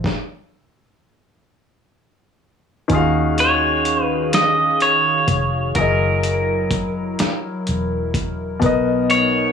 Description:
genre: slow six-eight R&B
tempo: 42 BPM (dotted quarters)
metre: 6/8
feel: straight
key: Eb minor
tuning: A4 = 440 Hz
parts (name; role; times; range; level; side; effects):
- clear baby grand piano; accompaniment; 0.0-9.5 s; B2 to F5; -22 LUFS; left 4 dB; none
- dusty soul sampler-style drum kit; drums; 0.0-9.3 s; hi-hat, kick drum, snare drum; -22 LUFS; equal; overdrive
- hollow soft pad; sustained chords; 2.9-9.5 s; Eb3 to F5; -25 LUFS; right 1 dB; chorus
- vintage muted fingered electric bass; bass; 2.9-9.5 s; Fb1 to Eb2; -23 LUFS; right 1 dB; none
- clean electric guitar; melody; 3.4-9.5 s; Bb4 to Eb5; -18 LUFS; equal; spring reverb, tape echo
room: light reverb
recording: studio ambience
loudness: -16 LUFS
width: side -7 dB against mid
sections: 0.0-2.9 A section; 2.9-9.5 B section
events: stop 0.0-2.9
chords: 0.0 N.C.; 2.9 Ebm11; 5.8 Gb13; 8.6 Bmaj7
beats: | 0.05 1.48 | 2.90 4.33 | 5.76 7.19 | 8.62

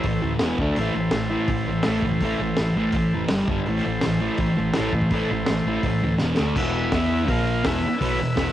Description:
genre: garage rock duo or trio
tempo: 166 BPM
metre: 4/4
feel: straight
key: A minor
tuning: A4 = 440 Hz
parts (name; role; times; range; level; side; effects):
- combo organ; sustained chords; 0.0-8.5 s; E4 to F5; -30 LUFS; equal; cassette tape
- thick fuzz guitar; riff; 0.0-8.5 s; E2 to E4; -22 LUFS; equal; distortion, cassette tape
- hollow-body short-scale fingered electric bass; bass; 0.0-8.5 s; E1 to E2; -31 LUFS; equal; none
- crunchy breakbeat drum kit; drums; 0.0-8.5 s; crash cymbal, hi-hat, kick drum, snare drum; -27 LUFS; equal; none
room: light reverb, small room reverb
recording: home recording on cassette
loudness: -20 LUFS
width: side -12 dB against mid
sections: 0.0-6.6 A section; 6.6-8.5 B section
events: drum fill 6.2-6.6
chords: 0.4 E5; 0.6 D5; 0.8 Am; 3.3 G5; 3.7 Am; 6.2 E5; 6.4 D5; 6.6 E5; 7.3 Bb5; 7.7 E5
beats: 0.04 0.41 | 0.77 1.13 1.49 1.86 | 2.22 2.58 2.94 3.31 | 3.67 4.03 4.39 4.76 | 5.12 5.48 5.84 6.21 | 6.57 6.93 7.29 7.66 | 8.02 8.38

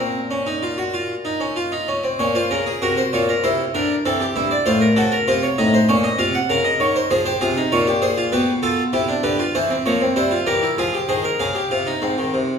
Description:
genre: classical, baroque-style 3-part fugue for harpsichord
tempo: 97 BPM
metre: 4/4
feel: straight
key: Bb minor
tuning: A4 = 440 Hz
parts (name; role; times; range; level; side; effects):
- harpsichord; solo; 0.0-12.6 s; G2 to Gb5; -17 LUFS; equal; none
room: wet recital hall reverb, RT60 1.4 s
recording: heard from further back in the room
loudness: -17 LUFS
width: side -6 dB against mid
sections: 0.0-2.2 A section; 2.2-12.0 B section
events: none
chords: 0.0 Bbm; 3.4 C7; 4.7 F7/A; 5.9 Bbm; 7.1 Fm; 8.3 G7/B; 9.5 C7/E; 10.8 Fm; 12.0 Ab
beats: 0.30 0.94 1.57 | 2.20 2.82 3.44 4.06 | 4.67 5.28 5.89 6.50 | 7.11 7.72 8.32 8.93 | 9.54 10.15 10.78 11.40 | 12.02

